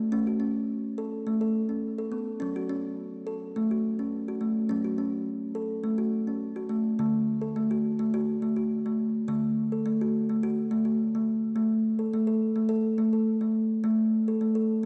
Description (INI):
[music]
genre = world meditative, meditative tuned percussion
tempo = 105 BPM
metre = 4/4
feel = straight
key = unclear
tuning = A4 = 442 Hz
[part]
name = kalimba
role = solo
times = 0.0-14.9 s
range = D3 to A4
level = -28 LUFS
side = equal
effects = none
[sound]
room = wet lush hall reverb, RT60 2.6 s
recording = home recording on cassette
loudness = -28 LUFS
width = mono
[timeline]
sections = 0.0-7.0 A section; 7.0-14.9 B section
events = none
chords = 0.1 A; 2.4 F#m; 7.0 D; 11.6 N.C.